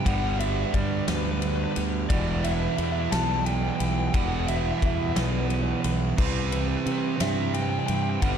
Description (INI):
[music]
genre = post-rock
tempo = 59 BPM (dotted quarters)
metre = 6/8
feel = straight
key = E minor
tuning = A4 = 445 Hz
[part]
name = sweeping resonant pad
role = sustained chords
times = 0.0-8.4 s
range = G3 to B4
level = -39 LUFS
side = left 1 dB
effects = none
[part]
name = twelve-string electric guitar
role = arpeggios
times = 0.0-8.4 s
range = E2 to D4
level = -34 LUFS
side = left 4 dB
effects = analog chorus, slapback echo
[part]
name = distorted electric guitar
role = riff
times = 0.0-8.4 s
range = E2 to C4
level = -29 LUFS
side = right 9 dB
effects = overdrive
[part]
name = raw garage guitar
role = melody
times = 0.1-8.4 s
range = B4 to A5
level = -32 LUFS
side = left 1 dB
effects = overdrive, slapback echo
[part]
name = fuzz fingered electric bass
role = bass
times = 0.1-8.4 s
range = E1 to C3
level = -28 LUFS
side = left 1 dB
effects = overdrive
[part]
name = big rock drum kit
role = drums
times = 0.1-8.4 s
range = crash cymbal, kick drum, ride cymbal, snare drum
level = -30 LUFS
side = left 1 dB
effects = none
[sound]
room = small room ambience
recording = dark, warm production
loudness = -23 LUFS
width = side -8 dB against mid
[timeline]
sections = 0.0-8.4 A section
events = none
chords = 0.1 Gmaj7; 2.1 Em; 6.2 Cmaj7